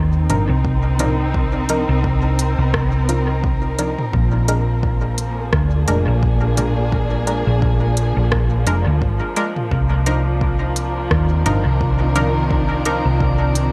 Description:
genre	ambient dub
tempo	86 BPM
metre	4/4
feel	swing 57% on 16ths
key	C minor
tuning	A4 = 440 Hz
part	dark studio string section	sustained chords	0.0-13.7 s	Eb3 to Bb4	-26 LUFS	equal	none
part	hollow-body short-scale fingered electric bass	bass	0.0-13.7 s	F1 to Eb2	-20 LUFS	equal	none
part	filtered dub chord stab	stabs	0.3-13.0 s	F3 to Bb4	-27 LUFS	equal	chorus, dub echo
part	organic electronic drum kit	drums	0.3-13.7 s	hi-hat, rim click, toms	-29 LUFS	equal	overdrive, studio reverb, dub echo
part	electronic kick drum	drums	0.6-13.4 s	none	-25 LUFS	equal	overdrive, studio reverb
part	drifting glass-harmonics texture	texture	9.7-13.7 s	D4 to D5	-34 LUFS	equal	chorus, built-in reverb
room	light reverb, digital ambience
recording	none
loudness	-18 LUFS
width	mono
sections	0.0-13.7 A section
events	none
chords	0.0 Cm11; 4.1 Bb7; 9.7 Cm11

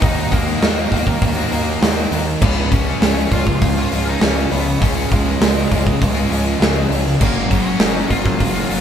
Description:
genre	quiet-loud alternative rock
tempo	100 BPM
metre	4/4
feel	straight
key	unclear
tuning	A4 = 440 Hz
part	octave-fuzz lead guitar	melody	0.0-8.8 s	G#3 to E#5	-25 LUFS	equal	distortion
part	crunchy overdriven guitar	riff	0.0-8.8 s	C#3 to F#4	-23 LUFS	left 5 dB	none
part	crunchy overdriven guitar	riff	0.0-8.8 s	F#2 to D#4	-24 LUFS	left 1 dB	none
part	thick fuzz guitar	riff	0.0-8.8 s	C#3 to F#4	-25 LUFS	right 5 dB	distortion
part	gritty driven synth bass	bass	0.0-8.8 s	F#1 to D#2	-23 LUFS	equal	none
part	big rock drum kit	drums	0.0-8.8 s	crash cymbal, hi-hat, kick drum, snare drum	-17 LUFS	right 1 dB	none
room	light reverb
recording	band playing live in one room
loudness	-14 LUFS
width	side -8 dB against mid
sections	0.0-8.8 A section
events	none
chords	0.0 D#m; 2.4 C#; 7.2 F#

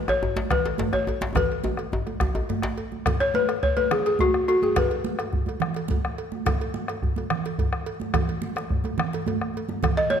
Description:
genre	west african traditional, West African drum ensemble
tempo	141 BPM (dotted quarters)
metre	12/8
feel	straight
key	B major pentatonic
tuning	A4 = 440 Hz
part	balafon	melody	0.1-5.1, 10.0-10.2 s	F#4 to D#5	-23 LUFS	left 2 dB	none
part	bombo	percussion	0.1-10.2 s	none	-28 LUFS	equal	none
part	cowbell	percussion	0.1-10.1 s	none	-36 LUFS	right 5 dB	none
part	djembe	percussion	0.1-10.0 s	none	-34 LUFS	left 6 dB	none
part	djembe	percussion	0.1-2.8 s	none	-29 LUFS	left 1 dB	none
part	congas	percussion	0.4-10.2 s	none	-30 LUFS	right 7 dB	none
room	moderate concert hall reverb, RT60 1.8 s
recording	none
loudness	-22 LUFS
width	side -8 dB against mid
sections	0.0-3.1 A section; 3.1-10.2 B section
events	drum fill 1.4-3.1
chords	none

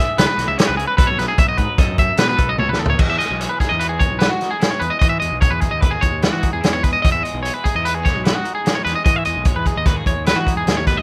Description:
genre	math rock and midwest emo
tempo	148 BPM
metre	5/4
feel	straight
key	unclear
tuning	A4 = 440 Hz
part	twangy electric guitar	accompaniment	0.0-11.0 s	E2 to A4	-33 LUFS	equal	none
part	twangy electric guitar	arpeggios	0.0-11.0 s	F#4 to E5	-22 LUFS	equal	harmonic tremolo
part	fuzz picked electric bass	bass	0.2-11.0 s	B1 to E3	-27 LUFS	equal	overdrive
part	loose indie drum kit	drums	0.2-11.0 s	crash cymbal, hi-hat, kick drum, snare drum, toms	-20 LUFS	equal	none
room	little or no reverb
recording	rough home demo mix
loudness	-18 LUFS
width	mono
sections	0.0-3.0 A section; 3.0-11.0 B section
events	drum fill 2.6-3.0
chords	0.0 C#m7; 1.0 B7

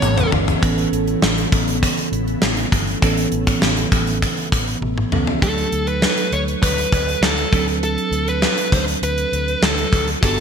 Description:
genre	1980s-style pop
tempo	100 BPM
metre	4/4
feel	straight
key	D major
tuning	A4 = 440 Hz
part	fuzz lead guitar	melody	0.0-0.3, 5.4-10.4 s	A4 to C#5	-22 LUFS	equal	distortion, digital delay
part	bell-like tine electric piano	accompaniment	0.0-10.4 s	E3 to A4	-23 LUFS	right 4 dB	wide subtle chorus
part	ensemble organ-string	sustained chords	0.0-5.4 s	C#3 to E4	-29 LUFS	left 2 dB	ensemble chorus
part	vintage muted fingered electric bass	bass	0.0-10.4 s	G1 to D2	-24 LUFS	equal	none
part	gated 80s drum kit	drums	0.0-10.4 s	hi-hat, kick drum, snare drum, toms	-19 LUFS	left 1 dB	gated reverb
part	tube shaker	percussion	0.0-0.6 s	none	-38 LUFS	left 11 dB	none
room	moderate lush hall reverb, RT60 2.9 s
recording	bright 1980s-style digital production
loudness	-16 LUFS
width	side -7 dB against mid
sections	0.6-5.4 A section; 5.4-10.4 B section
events	drum fill 0.0-0.6, 4.8-5.4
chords	0.0 Aadd9; 5.4 D; 7.5 D7

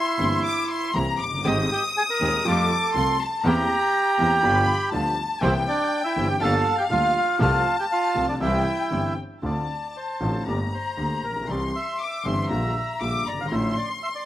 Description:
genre	tango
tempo	119 BPM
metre	4/4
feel	rubato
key	D minor from 9.4 s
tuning	A4 = 444 Hz
part	bandoneon	melody	0.0-14.3 s	C4 to Bb5	-24 LUFS	right 2 dB	slapback echo
part	warm studio violin section	second line	0.0-14.3 s	F5 to Eb6	-27 LUFS	left 4 dB	slapback echo
part	warm concert grand piano	accompaniment	0.2-13.7 s	Eb1 to A4	-29 LUFS	equal	slapback echo
part	warm studio string section	stabs	0.2-9.1 s	G3 to G4	-32 LUFS	right 2 dB	slapback echo
part	bright double bass	bass	0.2-13.7 s	Gb1 to F2	-27 LUFS	equal	none
room	little or no reverb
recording	recorded outdoors, with no room sound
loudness	-21 LUFS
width	side -13 dB against mid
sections	0.0-9.4 A section; 9.4-14.3 B section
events	none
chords	0.0 C7; 1.4 Abmaj7; 2.5 Fadd9; 3.4 C7/E; 4.4 G7; 5.4 C7; 6.4 Gm7; 7.4 F/C; 8.4 C; 9.4 Dm7; 10.5 Gmadd9; 11.5 C; 12.5 Gm7/Bb; 13.5 Dmadd9/A

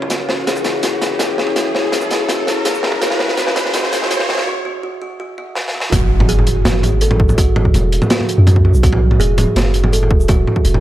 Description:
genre	half-time drum and bass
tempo	165 BPM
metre	4/4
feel	half-time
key	F# minor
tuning	A4 = 439 Hz
part	dark analog pad	sustained chords	0.0-4.4 s	C#4 to C#5	-24 LUFS	left 3 dB	chorus, sidechain pumping
part	kalimba	arpeggios	0.0-10.8 s	F#4 to A4	-21 LUFS	right 2 dB	low-pass filter, tape echo
part	crunchy breakbeat drum kit	drums	0.0-10.8 s	hi-hat, shaker, snare drum, toms	-18 LUFS	equal	high-pass filter on hats, high-pass filter on toms, high-pass filter on snare, high-pass filter on perc, high-pass filter on room
part	riser and impact	sound effects	0.0-7.4 s	none	-22 LUFS	equal	none
part	long sustained 808-style bass	bass	5.9-10.8 s	E1 to F#2	-14 LUFS	equal	none
part	electronic kick drum	drums	5.9-10.6 s	none	-15 LUFS	equal	none
room	light reverb, small room reverb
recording	high-pass filter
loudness	-13 LUFS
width	side -13 dB against mid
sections	0.0-5.9 A section; 5.9-10.8 B section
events	build-up 0.0-5.9; drum fill 0.0-4.5, 5.6-5.9; riser 0.0-4.5; filter sweep on kalimba 0.0-5.9; break 4.5-5.9; drop 5.9-10.8; impact 5.9-7.4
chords	0.0 F#5

